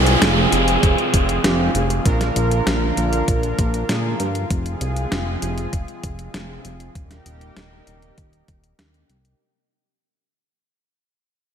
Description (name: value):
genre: synthwave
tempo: 98 BPM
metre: 4/4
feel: straight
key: F dorian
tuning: A4 = 436 Hz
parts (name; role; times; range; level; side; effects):
- lush unison pad; sustained chords; 0.0-9.4 s; C3 to Bb4; -25 LUFS; equal; chorus, sidechain pumping
- analog synth brass; stabs; 0.0-4.3 s; C4 to Bb4; -25 LUFS; right 4 dB; chorus, ping-pong delay
- fat analog bass; bass; 0.0-9.4 s; Eb1 to Bb2; -22 LUFS; equal; none
- downlifter; sound effects; 0.0-4.5 s; none; -23 LUFS; equal; none
- clean 12-bit digital drum machine; drums; 0.1-9.4 s; hi-hat, snare drum; -24 LUFS; equal; overdrive, gated reverb
- electronic kick drum; drums; 0.8-8.6 s; none; -20 LUFS; equal; overdrive
room: light reverb, digital ambience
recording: none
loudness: -17 LUFS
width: side -8 dB against mid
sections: 0.0-9.4 A section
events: fade-out 0.0-9.4; filter sweep on analog synth bass 0.0-9.4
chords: 0.0 Fm; 2.1 Bb; 4.5 Fm; 7.0 Cm7/Eb